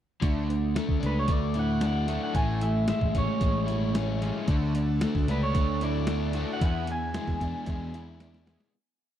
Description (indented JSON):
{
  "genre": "indie rock",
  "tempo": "113 BPM",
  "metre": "4/4",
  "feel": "straight",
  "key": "unclear",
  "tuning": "A4 = 439 Hz",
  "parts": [
    { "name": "fuzz guitar", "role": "riff", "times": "0.2-8.7 s", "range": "E3 to G#4", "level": "-33 LUFS", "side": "right 6 dB", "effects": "distortion, analog chorus, tape echo" },
    { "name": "overdriven electric guitar", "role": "riff", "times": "0.2-8.7 s", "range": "E2 to E4", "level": "-32 LUFS", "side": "left 8 dB", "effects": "none" },
    { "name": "fingered electric bass", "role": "bass", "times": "0.2-8.6 s", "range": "A1 to E2", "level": "-30 LUFS", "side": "equal", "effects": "none" },
    { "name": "boom bap sampler-style drum kit", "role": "drums", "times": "0.2-8.7 s", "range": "hi-hat, kick drum, snare drum", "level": "-28 LUFS", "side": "equal", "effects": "none" },
    { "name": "electric guitar through a small old amp", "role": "melody", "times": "1.1-8.5 s", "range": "B4 to G#5", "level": "-33 LUFS", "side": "equal", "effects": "spring reverb, tape echo" },
    { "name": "combo organ", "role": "sustained chords", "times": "4.5-8.7 s", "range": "D4 to G#5", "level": "-45 LUFS", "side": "right 1 dB", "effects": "none" }
  ],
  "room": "little or no reverb",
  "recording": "dry, close 1970s-style studio recording",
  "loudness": "-25 LUFS",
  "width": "side -11 dB against mid",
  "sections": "0.2-8.7 pre-chorus",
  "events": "fade-out 6.6-8.7; drum fill 8.2-8.7",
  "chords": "0.2 Dadd9; 2.4 Amaj7; 4.5 Dadd9; 6.6 E7"
}